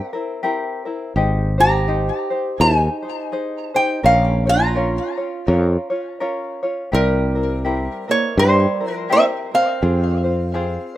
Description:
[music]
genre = Hawaiian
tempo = 83 BPM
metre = 4/4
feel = swing 59% on 8ths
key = unclear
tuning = A4 = 440 Hz
[part]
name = lap resonator guitar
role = melody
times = 0.0-11.0 s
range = Bb4 to Bb5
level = -19 LUFS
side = equal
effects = plate reverb, ping-pong delay
[part]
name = fingerpicked old ladder-braced acoustic guitar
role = second line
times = 0.0-11.0 s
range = G3 to G4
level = -26 LUFS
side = right 4 dB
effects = ping-pong delay
[part]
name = tenor ukulele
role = accompaniment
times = 0.0-11.0 s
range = C4 to Db5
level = -24 LUFS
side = left 2 dB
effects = plate reverb
[part]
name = sustaining fretless electric bass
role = bass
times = 1.2-10.8 s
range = Ab1 to G2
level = -18 LUFS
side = equal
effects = none
[sound]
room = moderate studio reverb, RT60 0.5 s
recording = rough home demo mix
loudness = -17 LUFS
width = side -14 dB against mid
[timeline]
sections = 0.0-11.0 A section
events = none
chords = 0.0 C7; 1.2 Abmaj7; 4.0 Bbm; 6.9 C7; 9.8 Fm

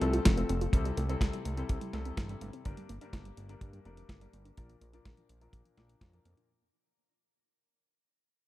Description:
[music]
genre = italo disco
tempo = 125 BPM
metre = 4/4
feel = straight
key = unclear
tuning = A4 = 440 Hz
[part]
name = wide unison pluck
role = arpeggios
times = 0.0-6.5 s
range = D3 to F4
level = -40 LUFS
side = right 2 dB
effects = tape echo, shimmer reverb
[part]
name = clear concert grand piano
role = stabs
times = 0.0-6.5 s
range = G2 to Bb4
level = -39 LUFS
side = left 4 dB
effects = low-pass filter, tape echo, shimmer reverb
[part]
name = fat analog bass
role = bass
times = 0.0-6.3 s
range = F1 to G2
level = -35 LUFS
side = equal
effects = none
[part]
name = clean 12-bit digital drum machine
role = drums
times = 0.0-6.5 s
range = hi-hat, snare drum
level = -35 LUFS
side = equal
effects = small room ambience
[part]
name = kick drum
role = drums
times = 0.3-6.1 s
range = none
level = -30 LUFS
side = equal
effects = small room ambience
[sound]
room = light reverb, studio reverb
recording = dark, warm production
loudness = -30 LUFS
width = side -16 dB against mid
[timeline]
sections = 0.0-6.5 A section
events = fade-out 0.0-6.5; filter sweep on synth arpeggio sound 0.0-6.5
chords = 0.0 F; 0.7 C6; 2.7 Gm; 4.6 Bb

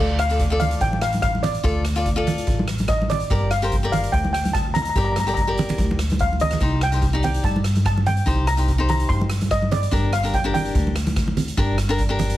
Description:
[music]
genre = calypso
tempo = 145 BPM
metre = 4/4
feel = straight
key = G minor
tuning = A4 = 440 Hz
[part]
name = steel pan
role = melody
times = 0.0-12.4 s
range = D5 to C6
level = -24 LUFS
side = left 1 dB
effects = none
[part]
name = cavaquinho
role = accompaniment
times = 0.0-12.4 s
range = D4 to D5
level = -25 LUFS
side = left 2 dB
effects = none
[part]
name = upright bass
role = bass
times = 0.0-12.3 s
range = G1 to G2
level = -23 LUFS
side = equal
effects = none
[part]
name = street-band drum kit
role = drums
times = 0.2-12.4 s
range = hi-hat, kick drum, rim click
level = -25 LUFS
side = equal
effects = none
[part]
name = congas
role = percussion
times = 0.6-12.3 s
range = none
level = -26 LUFS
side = right 2 dB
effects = none
[sound]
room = light reverb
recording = heavily compressed radio sound, multiband compression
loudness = -18 LUFS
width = side -14 dB against mid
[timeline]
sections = 0.0-12.4 A section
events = drum fill 6.3-6.6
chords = 0.0 Dm; 3.3 Gm; 6.6 Cm; 9.9 Gm

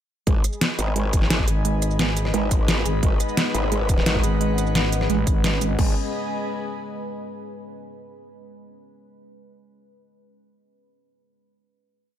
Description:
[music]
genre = dark technical drum and bass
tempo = 174 BPM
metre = 4/4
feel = straight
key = G# minor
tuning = A4 = 440 Hz
[part]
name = deep dark ambient pad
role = sustained chords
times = 1.5-5.9 s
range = G#3 to B4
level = -31 LUFS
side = left 2 dB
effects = chorus, built-in reverb, sidechain pumping
[part]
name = warbly dusty pluck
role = arpeggios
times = 0.3-5.9 s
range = G#3 to G#4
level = -29 LUFS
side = right 6 dB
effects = chorus, sidechain pumping, ping-pong delay
[part]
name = growl bass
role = bass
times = 0.3-5.9 s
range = G#1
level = -25 LUFS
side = equal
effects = chorus, tube saturation
[part]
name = dubstep drum kit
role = drums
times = 0.3-5.9 s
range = crash cymbal, hi-hat, rim click, shaker, snare drum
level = -25 LUFS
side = equal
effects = none
[part]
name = electronic kick drum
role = drums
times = 0.3-5.9 s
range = none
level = -21 LUFS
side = equal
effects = none
[part]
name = airy breathy pad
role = texture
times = 0.3-7.1 s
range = G#4 to B5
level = -31 LUFS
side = equal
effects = chorus, sidechain pumping
[part]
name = growling FM bass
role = bass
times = 1.5-5.8 s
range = G#1 to A1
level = -23 LUFS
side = equal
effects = none
[sound]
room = digital ambience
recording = none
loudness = -20 LUFS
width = side -10 dB against mid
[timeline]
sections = 0.3-5.8 drop; 5.8-7.2 final chord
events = drop 0.3-5.8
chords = 0.3 G#m

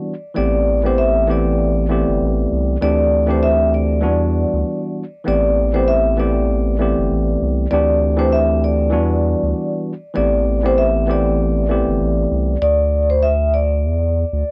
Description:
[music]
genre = hip hop, boom-bap hip-hop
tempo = 98 BPM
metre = 4/4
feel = swing 58% on 16ths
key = A dorian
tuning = A4 = 438 Hz
[part]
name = tine electric piano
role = accompaniment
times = 0.0-12.6 s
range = E3 to G4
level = -22 LUFS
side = equal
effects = cassette tape, high-pass filter, low-pass filter
[part]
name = vibraphone with soft mallets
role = melody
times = 0.4-14.5 s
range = C5 to E5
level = -22 LUFS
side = equal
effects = high-pass filter, low-pass filter
[part]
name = saturated sub bass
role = bass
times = 0.4-14.4 s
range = G1 to E2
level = -21 LUFS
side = equal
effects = none
[sound]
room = little or no reverb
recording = dry, gritty hardware recording, transformer saturation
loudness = -17 LUFS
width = mono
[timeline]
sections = 0.0-14.5 A section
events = none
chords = 0.4 Am7; 2.8 D9sus4; 4.0 Em9; 5.3 Am7; 7.7 D9sus4; 8.9 Em9; 10.2 Am7; 12.6 Dsus2

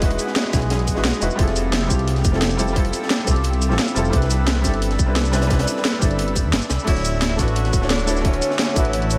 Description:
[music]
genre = liquid drum and bass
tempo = 175 BPM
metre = 4/4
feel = straight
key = unclear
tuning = A4 = 438 Hz
[part]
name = felt-muted upright piano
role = accompaniment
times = 0.0-9.2 s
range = D3 to C#5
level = -26 LUFS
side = equal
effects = delay
[part]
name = ethereal airy pad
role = sustained chords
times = 0.0-9.2 s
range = G#4 to E6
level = -33 LUFS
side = equal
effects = ensemble chorus, built-in reverb, sidechain pumping
[part]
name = dark detuned saw bass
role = bass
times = 0.0-9.2 s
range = D1 to E2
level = -24 LUFS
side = equal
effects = none
[part]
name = crunchy breakbeat drum kit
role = drums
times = 0.0-9.2 s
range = hi-hat, snare drum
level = -33 LUFS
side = equal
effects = high-pass filter on hats, studio reverb, high-pass filter on snare, high-pass filter on room
[part]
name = drum and bass drum kit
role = drums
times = 0.0-9.2 s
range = crash cymbal, hi-hat, rim click, shaker, snare drum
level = -27 LUFS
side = equal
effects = studio reverb
[part]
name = electronic kick drum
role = drums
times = 0.0-8.8 s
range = none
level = -22 LUFS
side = equal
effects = studio reverb
[part]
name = clear tenor saxophone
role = melody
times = 6.9-9.2 s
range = C#4 to F#4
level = -30 LUFS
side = equal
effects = delay
[sound]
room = moderate cathedral reverb, RT60 5.8 s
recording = dreamy mix soaked in reverb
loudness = -20 LUFS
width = mono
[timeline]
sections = 0.0-9.2 A section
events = none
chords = 0.0 Emaj9; 1.4 Fmaj9; 4.1 Cmaj9; 6.9 Dmaj9

